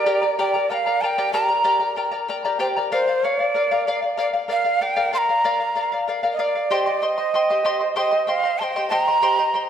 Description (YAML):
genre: andean folk, Andean ensemble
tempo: 95 BPM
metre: 3/4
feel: straight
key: unclear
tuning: A4 = 439 Hz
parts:
  - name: breathy mellow quena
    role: melody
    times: 0.0-9.7 s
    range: C5 to C6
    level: -20 LUFS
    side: right 2 dB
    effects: none
  - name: charango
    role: accompaniment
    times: 0.0-9.7 s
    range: G4 to C6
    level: -23 LUFS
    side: left 3 dB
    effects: none
room: wet recital hall reverb, RT60 1.6 s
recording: none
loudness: -18 LUFS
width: side -8 dB against mid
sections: 0.0-9.7 A section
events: none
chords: 0.0 Gm; 2.9 Bb; 6.7 Cm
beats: 0.39 | 1.02 1.66 2.29 | 2.92 3.56 4.19 | 4.82 5.45 6.08 | 6.71 7.34 7.97 | 8.60 9.22